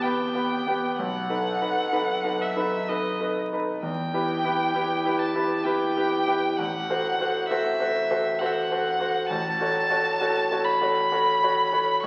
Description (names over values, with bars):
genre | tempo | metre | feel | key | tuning
classical, romantic duo for violin and grand piano | 65 BPM | 3/4 | uneven beats, rubato | E minor | A4 = 440 Hz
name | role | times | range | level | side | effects
clear violin | melody | 0.0-12.1 s | D#5 to C#6 | -28 LUFS | equal | none
bright concert grand piano | accompaniment | 0.0-12.1 s | A1 to C#5 | -28 LUFS | equal | none
room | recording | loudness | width
wet scoring stage reverb, RT60 2.0 s | very old 78 rpm record, vinyl crackle | -25 LUFS | mono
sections
0.0-12.1 A section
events
none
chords
0.0 Em; 1.0 B7; 3.8 Em; 6.6 F#dim/A; 9.3 F#m/A